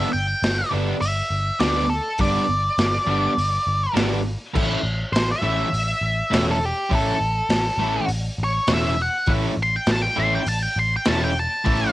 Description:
garage rock duo or trio; 102 BPM; 4/4; straight; A mixolydian; A4 = 440 Hz
octave-fuzz lead guitar; melody; 0.0-11.9 s; G4 to C6; -23 LUFS; equal; distortion, cassette tape
biting overdriven guitar; riff; 0.0-11.9 s; G2 to E4; -24 LUFS; equal; cassette tape
picked electric bass; bass; 0.0-11.8 s; E1 to D2; -25 LUFS; equal; tube saturation
crunchy breakbeat drum kit; drums; 0.4-11.8 s; crash cymbal, hi-hat, kick drum, snare drum; -25 LUFS; equal; cassette tape
light reverb; home recording on cassette; -19 LUFS; side -16 dB against mid
0.0-11.9 A section
0.0 G; 4.5 A

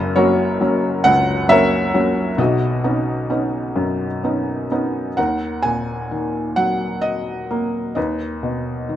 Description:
classical, lyrical solo piano; 42-45 BPM (dotted quarters); 6/8; rubato; B major; A4 = 441 Hz
felt-muted upright piano; solo; 0.0-9.0 s; F#1 to G#5; -17 LUFS; equal
moderate recital hall reverb, RT60 1.7 s; -17 LUFS; side -11 dB against mid
0.0-5.2 A section; 5.2-9.0 B section
0.0 F#; 2.4 Badd9; 5.2 D#m; 8.0 B/D#

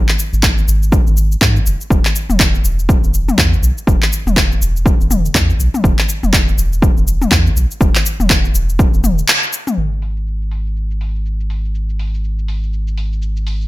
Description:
afro house; 122 BPM; 4/4; swing 59% on 16ths; A4 = 440 Hz
round analog bass; bass; 0.0-13.7 s; E1 to G#2; -17 LUFS; equal; sidechain pumping
deep house drum kit; drums; 0.1-13.7 s; handclaps, hi-hat, shaker, toms; -16 LUFS; left 1 dB; low-pass filter on perc, small room ambience, low-pass filter on snare, low-pass filter on toms, low-pass filter on hats
electronic kick drum; drums; 0.4-8.9 s; -14 LUFS; equal; overdrive, small room ambience
little or no reverb; -12 LUFS; side -18 dB against mid
0.0-9.8 A section; 9.8-13.7 B section
band accent 9.3; filter sweep on drum 9.8-13.7

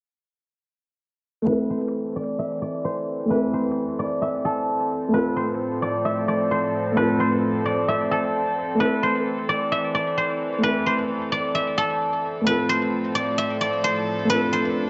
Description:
hip hop; 131 BPM; 4/4; half-time; A minor; A4 = 435 Hz
dark baby grand piano; accompaniment; 1.4-14.9 s; A3 to A4; -28 LUFS; equal; low-pass filter, dub echo
guzheng; melody; 1.5-14.9 s; A4 to E5; -26 LUFS; equal; low-pass filter, dub echo
dark chamber string section; sustained chords; 1.5-14.9 s; A2 to A4; -31 LUFS; equal; low-pass filter
moderate spring reverb, RT60 1.2 s, studio reverb; echo-heavy mix, nothing above 7.8 kHz; -23 LUFS; mono
1.5-14.9 A section
filter sweep 1.5-14.9
1.5 Am; 5.1 F/A; 8.8 Am; 12.5 F/A

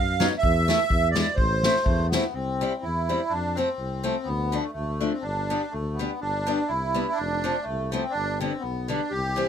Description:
alpine folk, alpine dance band; 124 BPM; 2/4; swing 53% on 8ths, rubato; A4 = 443 Hz
accordion; melody; 0.0-9.5 s; A3 to F5; -26 LUFS; right 2 dB; light tremolo tuning
mellow tuba; bass; 0.0-9.4 s; F1 to F#2; -29 LUFS; equal
picked acoustic archtop guitar; accompaniment; 0.2-9.5 s; D3 to E4; -27 LUFS; left 3 dB
unplugged drum kit; drums; 0.2-2.2 s; kick drum, snare drum; -26 LUFS; equal
little or no reverb; close, detailed microphones; -23 LUFS; side -8 dB against mid
0.0-2.3 A section; 2.3-9.5 B section
0.4 Esus4; 0.9 E; 1.4 Am; 2.3 C; 3.3 F; 4.3 Dm; 5.2 G; 7.2 F; 8.2 G

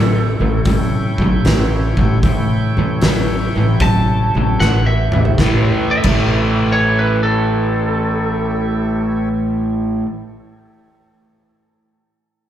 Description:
blues rock power trio and southern rock; 76 BPM; 4/4; swing 67% on 8ths; A mixolydian; A4 = 440 Hz
lightly driven lead guitar; melody; 0.0-9.3 s; A4 to A5; -21 LUFS; right 2 dB; slapback echo
overdriven tonewheel organ; sustained chords; 0.0-9.3 s; A3 to G5; -27 LUFS; right 1 dB; slow rotary speaker
overdriven semi-hollow guitar; riff; 0.0-10.1 s; A2 to A3; -18 LUFS; equal; slapback echo
upright bass; bass; 0.0-10.0 s; A1 to A2; -18 LUFS; equal
oversized low-tuned drum kit; drums; 0.7-6.2 s; crash cymbal, hi-hat, kick drum, snare drum, toms; -20 LUFS; equal
light reverb, studio reverb; live gig heard through the venue's PA, club reverb; -13 LUFS; side -10 dB against mid
0.0-5.4 A section; 5.4-8.5 B section
drum fill 4.6-5.4
0.0 A7

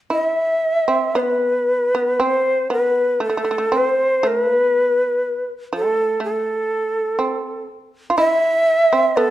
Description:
japanese traditional, Japanese chamber music; 57-61 BPM; 4/4; rubato; A4 = 440 Hz
breathy bright shakuhachi; melody; 0.1-9.3 s; A4 to E5; -17 LUFS; equal
shamisen; second line; 0.1-9.3 s; A3 to F4; -23 LUFS; right 3 dB
moderate recital hall reverb, RT60 1.4 s; dark, warm production; -16 LUFS; side -13 dB against mid
0.1-9.3 A section

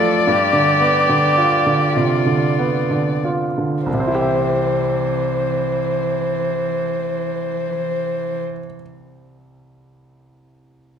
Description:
classical, slow romantic movement for piano trio; 29-38 BPM (dotted quarters); 12/8; rubato; C major; A4 = 440 Hz
dark violin; melody; 0.0-8.4 s; C5 to D5; -20 LUFS; left 5 dB
rich cello; second line; 0.0-8.4 s; E3 to A4; -23 LUFS; right 7 dB
bright baby grand piano; accompaniment; 0.0-11.0 s; C2 to E5; -20 LUFS; right 2 dB
wet recital hall reverb, RT60 1.6 s; dark, warm production; -16 LUFS; side -8 dB against mid
0.0-3.9 A section; 3.9-10.4 B section
slowing down 0.0-3.9
0.3 G7; 3.9 C

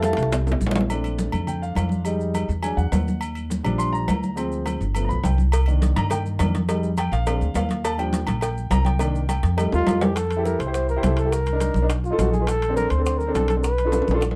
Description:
Afro-Cuban jazz; 207 BPM; 4/4; straight; Bb major, F major from 10.2 s; A4 = 440 Hz
warm grand piano; accompaniment; 0.0-14.2 s; Eb3 to C6; -29 LUFS; equal
upright bass; bass; 0.0-14.4 s; G1 to G2; -26 LUFS; equal
bongos and cowbell; percussion; 0.0-0.9, 5.5-14.4 s; -34 LUFS; equal
congas; percussion; 0.0-14.4 s; -31 LUFS; equal
maracas; percussion; 0.0-14.4 s; -45 LUFS; equal
timbales and agogo bells; percussion; 0.0-14.4 s; -32 LUFS; equal
breathy trumpet; melody; 9.7-14.2 s; F4 to C5; -27 LUFS; equal
light reverb; dark, warm production; -22 LUFS; mono
0.9-10.2 A section; 10.2-14.4 B section
drum fill 0.0-0.9, 9.7-10.2, 13.9-14.4; grand piano solo 0.0-10.2
0.0 Fmaj9; 0.9 Bbmaj7; 2.1 Fm7; 2.6 E9; 3.2 Ebmaj7; 4.4 Dm7b5; 5.0 G7; 5.5 Cm7; 6.7 Fm7; 7.3 Bb7; 7.8 Ebmaj9; 9.0 Cm7; 9.6 F7; 10.2 Fmaj9; 11.3 Cm9; 11.9 B7#11; 12.5 Bbmaj9; 13.6 Bm7b5

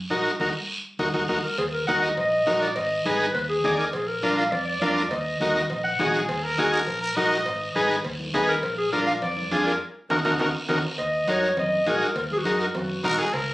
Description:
latin, cumbia; 204 BPM; 4/4; straight; Eb harmonic minor; A4 = 438 Hz
vintage muted fingered electric bass; bass; 0.0-13.5 s; Ab1 to Gb2; -34 LUFS; equal
combo organ; accompaniment; 0.1-13.2 s; D4 to D5; -24 LUFS; equal
congas; percussion; 0.1-13.2 s; -36 LUFS; equal
guiro; percussion; 0.1-13.5 s; -35 LUFS; right 1 dB
mellow clarinet; melody; 1.4-6.1, 8.5-13.2 s; Gb4 to Gb5; -25 LUFS; equal
cowbell and timbales; percussion; 1.6-13.5 s; -35 LUFS; right 2 dB
growling trumpet; second line; 6.1-7.8, 13.0-13.5 s; Ab4 to Eb5; -26 LUFS; equal
moderate studio reverb, RT60 0.7 s; recorded on a phone in the room, studio ambience; -22 LUFS; side -18 dB against mid
0.0-1.6 A section; 1.6-11.0 B section; 11.0-13.5 A section
band accent 0.4-1.6, 9.8-11.0; drum fill 10.3-11.0
0.0 Ebm; 2.8 Abm; 3.9 Bb; 5.1 Ebm; 7.5 Abm; 8.6 Bb7; 9.8 Ebm

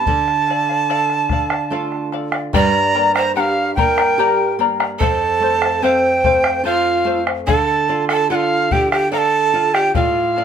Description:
andean folk, Andean ensemble; 73 BPM; 3/4; straight; A4 = 439 Hz
breathy bright quena; melody; 0.0-10.4 s; F5 to Bb5; -17 LUFS; right 3 dB; slapback echo
charango; accompaniment; 0.0-10.4 s; G4 to Bb5; -22 LUFS; left 9 dB
nylon-string guitar; accompaniment; 0.0-10.4 s; F2 to D5; -24 LUFS; right 3 dB
bombo; percussion; 0.1-10.1 s; -21 LUFS; left 2 dB
breathy reedy pan flute; second line; 2.5-10.4 s; F4 to D5; -20 LUFS; right 2 dB
wet studio ambience, RT60 0.5 s; -14 LUFS; side -8 dB against mid
0.0-2.5 A section; 2.5-10.4 B section
0.1 Dm; 2.5 Gm; 5.0 F; 7.5 Dm

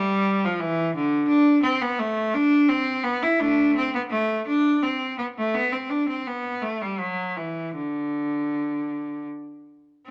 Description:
classical, baroque-style suite movement for unaccompanied cello; 76-88 BPM; 3/4; rubato; A4 = 440 Hz
rich cello; solo; 0.0-10.1 s; D3 to E4; -24 LUFS; equal
wet stone room reverb, RT60 1.1 s; -24 LUFS; mono
0.0-10.1 A section

